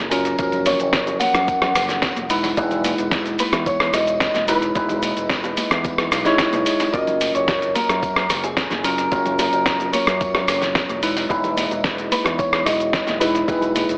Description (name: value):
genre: nu-disco, nu disco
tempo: 110 BPM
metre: 4/4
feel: straight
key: unclear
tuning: A4 = 443 Hz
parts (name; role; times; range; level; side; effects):
- electric guitar at the edge of break-up; melody; 0.0-13.7 s; G#4 to F#5; -26 LUFS; equal; dub echo
- tine electric piano; accompaniment; 0.0-14.0 s; E#3 to C#5; -26 LUFS; equal; overdrive, phaser, dub echo
- fingered electric bass with an envelope filter; bass; 0.0-14.0 s; E1 to F#2; -32 LUFS; equal; none
- dusty soul sampler-style drum kit; drums; 0.1-14.0 s; cabasa, hi-hat, rim click, snare drum; -24 LUFS; equal; dub echo
- bongos, tambourine and congas; percussion; 0.1-14.0 s; none; -34 LUFS; equal; none
- electronic kick drum; drums; 0.4-13.6 s; none; -34 LUFS; equal; none
room: moderate spring reverb, RT60 1.3 s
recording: echo-heavy mix, AM radio sound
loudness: -20 LUFS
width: mono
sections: 0.0-14.0 A section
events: none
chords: 0.0 F#maj7; 2.3 Emaj7; 6.9 F#maj7; 11.0 Emaj7